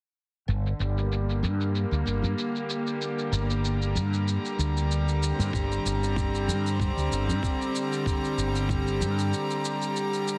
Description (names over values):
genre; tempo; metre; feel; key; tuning
organic downtempo; 95 BPM; 4/4; swing 54% on 16ths; G minor; A4 = 444 Hz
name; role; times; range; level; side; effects
bright chamber string section; sustained chords; 0.5-10.4 s; D3 to Bb5; -31 LUFS; equal; sidechain pumping, low-pass filter
mellow fretless electric bass; bass; 0.5-9.3 s; G1 to G2; -29 LUFS; equal; analog chorus, sidechain pumping
shaker; drums; 0.5-10.4 s; none; -39 LUFS; equal; low-pass filter on perc
electronic kick drum; drums; 5.5-8.8 s; none; -32 LUFS; equal; none
room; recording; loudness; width
light reverb; heavily compressed radio sound, multiband compression; -27 LUFS; mono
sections
0.5-10.4 A section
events
filter sweep on string section 0.5-10.4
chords
0.5 Gm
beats
| 0.48 1.11 1.74 2.38 | 3.01 3.64 4.27 4.90 | 5.53 6.17 6.80 7.43 | 8.06 8.69 9.32 9.95